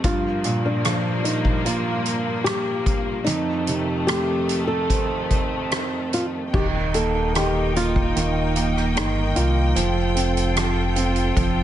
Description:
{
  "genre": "pop ballad",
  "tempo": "74 BPM",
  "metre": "4/4",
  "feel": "straight",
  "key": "unclear",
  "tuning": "A4 = 440 Hz",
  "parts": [
    { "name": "flamenco guitar", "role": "melody", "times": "0.0-10.1 s", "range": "D4 to A4", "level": "-26 LUFS", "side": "left 1 dB", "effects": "none" },
    { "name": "clear baby grand piano", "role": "accompaniment", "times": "0.0-11.6 s", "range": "F2 to C4", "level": "-25 LUFS", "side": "right 4 dB", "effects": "none" },
    { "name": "rich studio string section", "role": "sustained chords", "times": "0.0-11.6 s", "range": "F2 to G5", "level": "-28 LUFS", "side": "left 3 dB", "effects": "none" },
    { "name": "soft-mallet drum kit", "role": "drums", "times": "0.0-11.6 s", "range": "crash cymbal, hi-hat, kick drum, rim click", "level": "-25 LUFS", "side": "equal", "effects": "none" },
    { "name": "sub bass with octave", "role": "bass", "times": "6.5-11.6 s", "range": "Eb1 to C2", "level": "-24 LUFS", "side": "left 1 dB", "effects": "none" }
  ],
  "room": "light reverb",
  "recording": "nothing above 10.7 kHz",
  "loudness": "-19 LUFS",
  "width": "side -11 dB against mid",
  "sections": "0.0-6.5 A section; 6.5-11.6 B section",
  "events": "none",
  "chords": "0.0 Gm7; 3.3 F7; 6.5 Eb; 9.8 Fadd9"
}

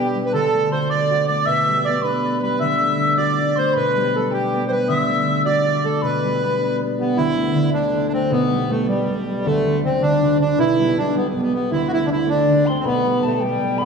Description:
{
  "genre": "celtic folk, Celtic jig",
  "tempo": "105 BPM (dotted quarters)",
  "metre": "6/8",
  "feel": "straight",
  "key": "G major",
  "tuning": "A4 = 441 Hz",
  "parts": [
    { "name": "accordion", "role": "melody", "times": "0.0-13.8 s", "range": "G3 to E5", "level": "-20 LUFS", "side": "right 2 dB", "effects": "tape echo" },
    { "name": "mellow hollow wooden whistle", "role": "second line", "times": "0.0-6.8, 11.7-13.8 s", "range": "D5 to E6", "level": "-23 LUFS", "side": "left 3 dB", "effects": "none" },
    { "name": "concert harp", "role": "accompaniment", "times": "0.0-13.8 s", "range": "B1 to F#4", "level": "-21 LUFS", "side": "equal", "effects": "none" }
  ],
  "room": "wet recital hall reverb, RT60 1.6 s",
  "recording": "studio ambience",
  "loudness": "-17 LUFS",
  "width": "side -5 dB against mid",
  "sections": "0.0-7.2 A section; 7.2-13.8 A section",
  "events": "none",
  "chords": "0.3 D; 1.5 G/B; 2.6 D; 3.7 G/B; 4.9 D; 6.0 G/B; 7.2 D5; 8.3 G/B; 9.4 N.C.; 10.6 G/B; 11.7 D5; 12.8 G/B"
}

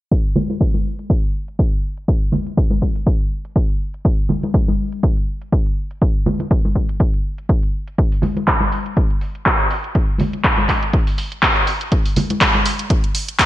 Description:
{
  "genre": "deep house",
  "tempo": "122 BPM",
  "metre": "4/4",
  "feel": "swing 56% on 16ths",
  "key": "none",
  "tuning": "none",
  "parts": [
    { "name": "electronic kick drum", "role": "drums", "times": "0.1-13.5 s", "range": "none", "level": "-17 LUFS", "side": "equal", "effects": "none" },
    { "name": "house drum kit", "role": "drums", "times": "0.1-13.5 s", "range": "handclaps, hi-hat", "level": "-18 LUFS", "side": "equal", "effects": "overdrive, gated reverb" },
    { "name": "congas", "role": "percussion", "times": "0.4-12.6 s", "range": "none", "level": "-22 LUFS", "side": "equal", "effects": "none" }
  ],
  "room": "light reverb, digital ambience",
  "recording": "bright 1980s-style digital production, low-pass filter",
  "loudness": "-16 LUFS",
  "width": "side -14 dB against mid",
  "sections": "0.1-13.5 A section",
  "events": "filter sweep 0.1-13.5",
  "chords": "none"
}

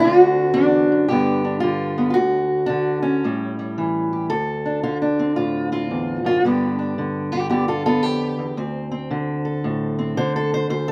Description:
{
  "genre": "acoustic country blues, solo or duo",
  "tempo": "112 BPM",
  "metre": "4/4",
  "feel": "swing 64% on 8ths",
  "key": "D mixolydian",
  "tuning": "A4 = 440 Hz",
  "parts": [
    { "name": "fingerpicked steel-string acoustic guitar", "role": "solo", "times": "0.0-10.9 s", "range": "D2 to C5", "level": "-20 LUFS", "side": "equal", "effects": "none" }
  ],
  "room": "light reverb",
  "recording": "recorded outdoors, with no room sound",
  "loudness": "-21 LUFS",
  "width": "mono",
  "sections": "0.0-4.3 A section; 4.3-10.9 B section",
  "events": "steel-string acoustic guitar solo 4.3-10.9",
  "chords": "0.0 D7; 1.1 G7; 2.2 N.C.; 3.2 A7; 4.3 D7(no3); 6.4 G7; 8.6 D7(no3)"
}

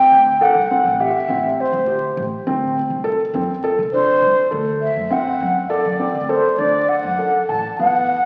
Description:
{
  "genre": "contemporary instrumental, chamber music in an uneven meter",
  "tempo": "204 BPM (eighths)",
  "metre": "9/8",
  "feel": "straight",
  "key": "unclear",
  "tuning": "A4 = 440 Hz",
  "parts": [
    { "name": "mellow baroque flute", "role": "melody", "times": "0.0-8.3 s", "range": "C5 to A5", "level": "-18 LUFS", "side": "equal", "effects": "none" },
    { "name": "felt-muted upright piano", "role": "arpeggios", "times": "0.0-8.1 s", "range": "B3 to A4", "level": "-24 LUFS", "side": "equal", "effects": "none" },
    { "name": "upright bass", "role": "bass", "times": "0.1-8.2 s", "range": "A1 to C3", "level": "-32 LUFS", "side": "equal", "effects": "none" }
  ],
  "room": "wet concert hall reverb, RT60 2.3 s",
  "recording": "very old 78 rpm record, vinyl crackle",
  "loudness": "-18 LUFS",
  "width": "mono",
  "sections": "0.0-8.3 A section",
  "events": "none",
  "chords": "0.0 Am7; 2.5 D7"
}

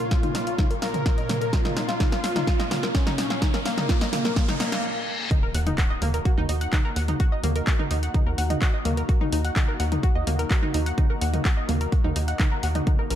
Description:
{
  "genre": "melodic techno",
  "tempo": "127 BPM",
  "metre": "4/4",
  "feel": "straight",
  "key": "Eb minor",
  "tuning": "A4 = 438 Hz",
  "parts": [
    { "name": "wide unison lead", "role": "melody", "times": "0.0-4.8 s", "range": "Bb3 to Bb4", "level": "-29 LUFS", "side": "equal", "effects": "sidechain pumping, tape echo" },
    { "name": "lush unison pad", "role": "sustained chords", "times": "0.0-13.2 s", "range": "Bb2 to F5", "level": "-35 LUFS", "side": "left 1 dB", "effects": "chorus, phaser, sidechain pumping" },
    { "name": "analog pluck", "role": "arpeggios", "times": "0.0-13.2 s", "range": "Bb3 to Gb6", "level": "-30 LUFS", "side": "equal", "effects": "chorus, sidechain pumping, digital delay" },
    { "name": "punchy analog drum machine", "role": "drums", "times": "0.0-13.2 s", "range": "handclaps, hi-hat, snare drum, toms", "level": "-29 LUFS", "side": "left 1 dB", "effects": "none" },
    { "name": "riser, reverse cymbal and impact", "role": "sound effects", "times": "0.3-7.2 s", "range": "none", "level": "-35 LUFS", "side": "left 1 dB", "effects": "none" },
    { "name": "electronic kick drum", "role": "drums", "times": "0.1-13.0 s", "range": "none", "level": "-22 LUFS", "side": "equal", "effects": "none" },
    { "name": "tight sequencer bass", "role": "bass", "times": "5.5-13.2 s", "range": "Bb1 to Eb2", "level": "-25 LUFS", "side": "equal", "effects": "sidechain pumping" }
  ],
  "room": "light reverb, digital ambience",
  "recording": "dark, warm production",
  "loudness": "-21 LUFS",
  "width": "side -10 dB against mid",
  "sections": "0.0-5.3 A section; 5.3-13.2 B section",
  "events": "build-up 0.0-5.3; drum fill 0.0-4.8; filter sweep on synth arpeggio sound 0.0-5.3; riser 0.3-4.8; reverse cymbal 4.4-5.3; stop 4.8-5.3; drop 5.3-13.2; impact 5.3-7.2",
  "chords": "0.0 Bbm; 5.3 Ebm"
}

